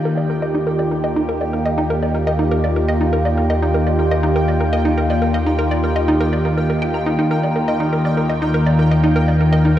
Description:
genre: ambient, sequencer-driven space music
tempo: 122 BPM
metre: 4/4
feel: straight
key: Eb major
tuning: A4 = 440 Hz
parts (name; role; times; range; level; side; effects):
- phased analog pad; sustained chords; 0.0-9.8 s; Eb3 to Bb4; -18 LUFS; equal; phaser, chorus
- hollow square pluck; riff; 0.0-9.8 s; Eb4 to Bb5; -21 LUFS; equal; chorus, tape echo
- analog drone; bass; 0.6-9.8 s; Eb2; -21 LUFS; equal; chorus
- pulsing gated texture; texture; 0.0-9.8 s; G5; -29 LUFS; right 2 dB; chorus, built-in reverb
room: wet huge ambient reverb, RT60 8.4 s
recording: played on a big sound system in a bare room, stone room reverb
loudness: -15 LUFS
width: side -12 dB against mid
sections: 0.0-9.8 A section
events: filter sweep on synth arpeggio sound 0.0-9.8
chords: 0.0 Ebadd9

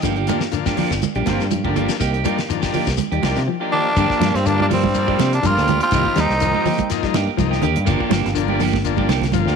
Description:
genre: afrobeat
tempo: 123 BPM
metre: 4/4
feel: swing 54% on 16ths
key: G minor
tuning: A4 = 440 Hz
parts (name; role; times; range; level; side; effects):
- semi-hollow electric guitar; arpeggios; 0.0-9.5 s; D3 to G3; -26 LUFS; left 11 dB; none
- clean electric guitar; stabs; 0.0-9.6 s; F3 to G4; -24 LUFS; right 10 dB; slapback echo
- fingered electric bass; bass; 0.0-9.6 s; G1 to C3; -22 LUFS; equal; tube saturation
- damped 70s drum kit; drums; 0.0-9.5 s; hi-hat, kick drum, snare drum; -27 LUFS; left 4 dB; none
- shekere; percussion; 0.0-9.5 s; none; -30 LUFS; left 5 dB; none
- overdriven combo organ; accompaniment; 0.3-9.6 s; F3 to F4; -26 LUFS; left 12 dB; none
- congas; percussion; 0.3-9.5 s; none; -24 LUFS; right 11 dB; none
- raspy tenor saxophone; melody; 3.7-6.9 s; C4 to F4; -20 LUFS; equal; none
- warm trumpet; second line; 3.7-6.9 s; G3 to C4; -28 LUFS; right 12 dB; none
room: moderate echo chamber reverb, RT60 1.5 s, small room ambience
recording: 1960s-style stereo with parts hard left and right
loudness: -16 LUFS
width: side -6 dB against mid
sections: 0.0-4.0 A section; 4.0-9.6 B section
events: none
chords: 0.0 Gm7; 2.0 Cm7; 4.0 Gm7; 5.9 Cm7; 7.9 Gm7

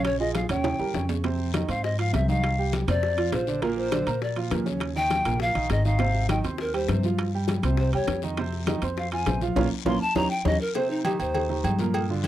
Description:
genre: Afro-Cuban jazz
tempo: 202 BPM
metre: 4/4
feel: straight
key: F minor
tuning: A4 = 440 Hz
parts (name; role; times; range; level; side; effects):
- mellow pan flute; melody; 0.0-11.6 s; Eb4 to C6; -27 LUFS; left 2 dB; none
- warm grand piano; accompaniment; 0.0-12.3 s; Bb2 to C6; -29 LUFS; right 6 dB; none
- upright bass; bass; 0.0-12.3 s; Ab1 to Bb2; -27 LUFS; left 1 dB; none
- bongos and cowbell; percussion; 0.0-12.3 s; none; -34 LUFS; left 9 dB; none
- timbales and agogo bells; percussion; 0.0-12.3 s; none; -33 LUFS; right 4 dB; none
- congas; percussion; 0.1-12.3 s; none; -33 LUFS; left 4 dB; none
- guiro; percussion; 0.1-12.3 s; none; -43 LUFS; left 17 dB; none
room: little or no reverb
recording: dry, close 1970s-style studio recording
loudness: -23 LUFS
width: side -13 dB against mid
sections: 0.0-1.2 A section; 1.2-10.8 B section; 10.8-12.3 B section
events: drum fill 0.6-1.2, 9.9-10.8; pan flute solo 1.2-12.3; band accent 9.6-10.8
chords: 0.1 Bbm7; 0.6 Eb7; 1.2 Fm7; 2.4 Cm; 3.0 F5; 3.6 Bbadd9; 4.8 Eb7; 6.0 Abmaj7; 7.2 Csus4; 7.8 C; 8.4 Fm7; 9.6 Bbm; 10.2 Eb7; 10.8 Eb6

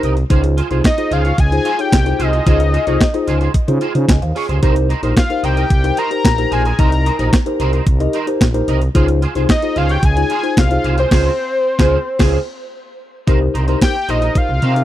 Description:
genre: early-eighties boogie funk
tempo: 111 BPM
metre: 4/4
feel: straight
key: C phrygian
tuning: A4 = 440 Hz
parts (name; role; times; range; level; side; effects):
- mellow tine electric piano; accompaniment; 0.0-14.8 s; Eb4 to Ab5; -20 LUFS; left 2 dB; wide subtle chorus
- electric guitar at the edge of break-up; riff; 0.0-14.8 s; Eb4 to Eb5; -25 LUFS; right 5 dB; ensemble chorus
- growling FM bass; bass; 0.0-14.8 s; Bb1 to Db3; -16 LUFS; equal; none
- clean 12-bit digital drum machine; drums; 0.0-14.8 s; crash cymbal, hi-hat, kick drum, snare drum; -14 LUFS; equal; none
- fat analog lead; melody; 0.9-14.8 s; C5 to Bb5; -20 LUFS; left 2 dB; chorus, tape echo
room: little or no reverb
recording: dry, close 1970s-style studio recording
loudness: -13 LUFS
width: side -13 dB against mid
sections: 0.0-13.3 A section; 13.3-14.8 B section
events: band accent 11.1-13.3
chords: 0.3 Dbmaj7; 4.6 Cm7; 9.0 Dbmaj7; 13.3 Cm7

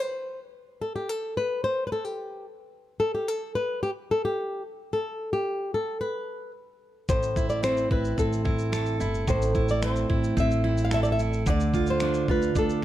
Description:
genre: acoustic pop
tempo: 110 BPM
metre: 4/4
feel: straight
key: unclear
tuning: A4 = 440 Hz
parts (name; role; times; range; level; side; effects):
- flamenco guitar; melody; 0.0-12.8 s; G4 to F5; -28 LUFS; left 1 dB; none
- fingerpicked steel-string acoustic guitar; accompaniment; 7.1-12.8 s; A2 to A4; -27 LUFS; right 3 dB; none
- upright bass; bass; 7.1-12.8 s; G1 to D2; -28 LUFS; equal; none
- dusty soul sampler-style drum kit; drums; 7.1-12.8 s; finger snaps, kick drum, shaker; -30 LUFS; equal; none
room: light reverb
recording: dark, warm production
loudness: -24 LUFS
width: side -13 dB against mid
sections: 0.0-12.8 A section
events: none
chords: 0.0 N.C.; 7.1 Am; 11.5 Dm

